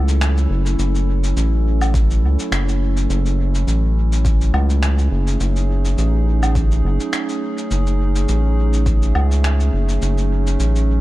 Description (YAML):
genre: ambient dub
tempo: 104 BPM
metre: 4/4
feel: swing 55% on 16ths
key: F# dorian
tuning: A4 = 441 Hz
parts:
  - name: warbly tape-like pad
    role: sustained chords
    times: 0.0-11.0 s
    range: F#3 to A4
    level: -24 LUFS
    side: right 1 dB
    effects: chorus, built-in reverb
  - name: round analog bass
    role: bass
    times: 0.0-11.0 s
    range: F#1 to C#2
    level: -16 LUFS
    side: equal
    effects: tube saturation
  - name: electronic cabasa, finger snaps and woodblock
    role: drums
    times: 0.1-10.9 s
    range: none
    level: -27 LUFS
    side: left 1 dB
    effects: dub echo
  - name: electronic kick drum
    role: drums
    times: 1.9-9.0 s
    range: none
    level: -22 LUFS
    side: equal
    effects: none
room: little or no reverb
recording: dark, warm production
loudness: -15 LUFS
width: side -17 dB against mid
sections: 0.0-11.0 A section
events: none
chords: 0.0 F#m7